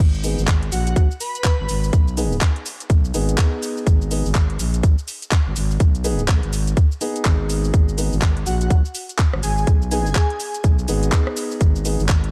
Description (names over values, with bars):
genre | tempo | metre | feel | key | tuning
bass house | 124 BPM | 4/4 | swing 61% on 16ths | G# minor | A4 = 439 Hz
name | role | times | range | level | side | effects
growling FM bass | bass | 0.0-12.3 s | G#1 to B1 | -24 LUFS | equal | tube saturation, sidechain pumping
garage drum kit | drums | 0.0-12.3 s | handclaps, hi-hat, rim click, shaker | -29 LUFS | equal | none
dark concert grand piano | stabs | 0.2-12.0 s | B3 to G#4 | -29 LUFS | equal | sidechain pumping, low-pass filter, delay
electronic kick drum | drums | 0.5-12.2 s | none | -18 LUFS | equal | none
airy dreamy lead | melody | 0.7-1.9, 8.5-10.6 s | F#4 to B4 | -30 LUFS | equal | chorus, delay
room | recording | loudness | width
little or no reverb | dark, warm production | -19 LUFS | mono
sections
0.0-12.3 A section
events
filter sweep on grand piano 0.0-12.3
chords
0.0 G#m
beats
0.48 0.96 1.45 | 1.93 2.41 2.90 3.38 | 3.87 4.35 4.83 5.32 | 5.80 6.29 6.77 7.25 | 7.74 8.22 8.70 9.19 | 9.67 10.16 10.64 11.12 | 11.61 12.09